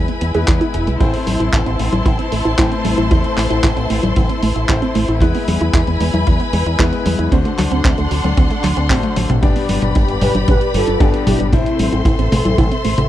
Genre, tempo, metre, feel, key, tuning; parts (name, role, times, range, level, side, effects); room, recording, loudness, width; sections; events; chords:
italo disco; 114 BPM; 4/4; straight; A harmonic minor; A4 = 439 Hz
warm studio string section; sustained chords; 0.0-13.1 s; D4 to C6; -22 LUFS; left 2 dB
wide unison pluck; arpeggios; 0.0-13.0 s; F#3 to G#5; -22 LUFS; right 3 dB; tape echo
clear concert grand piano; stabs; 0.0-13.1 s; G2 to D5; -24 LUFS; left 5 dB; tape echo
fingered electric bass with an envelope filter; bass; 0.0-13.1 s; E1 to E2; -20 LUFS; equal; tube saturation
dusty soul sampler-style drum kit; drums; 0.1-13.1 s; congas, handclaps, hi-hat, toms; -21 LUFS; left 2 dB
kick drum; drums; 0.5-12.7 s; -18 LUFS; equal
analog synth brass; melody; 10.2-12.0 s; C4 to B4; -20 LUFS; equal; chorus, tape echo
light reverb; dry, close 1970s-style studio recording; -13 LUFS; side -13 dB against mid
0.0-9.4 A section; 9.4-13.1 B section
drum fill 9.2, 9.4-13.1; filter sweep on analog polysynth 9.4-13.1
0.0 E; 1.0 Am; 5.2 E; 7.3 D7; 9.4 G; 11.5 Am